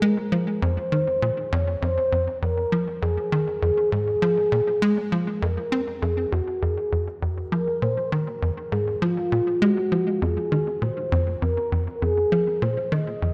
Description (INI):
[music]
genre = ambient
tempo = 100 BPM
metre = 4/4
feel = straight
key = F phrygian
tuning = A4 = 442 Hz
[part]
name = mellow horn-like synth lead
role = melody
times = 0.0-13.3 s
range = F4 to Eb5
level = -27 LUFS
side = equal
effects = chorus, analog delay
[part]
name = tight sequencer bass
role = riff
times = 0.0-13.3 s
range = F2 to C4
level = -26 LUFS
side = equal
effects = analog chorus, analog delay
[sound]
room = wet plate reverb, RT60 2.5 s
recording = none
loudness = -24 LUFS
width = mono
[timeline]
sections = 0.0-13.3 A section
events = none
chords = 0.0 Fm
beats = 0.02 0.62 1.22 | 1.82 2.42 3.02 3.62 | 4.22 4.82 5.42 6.02 | 6.62 7.22 7.82 8.42 | 9.02 9.62 10.22 10.82 | 11.42 12.02 12.62 13.22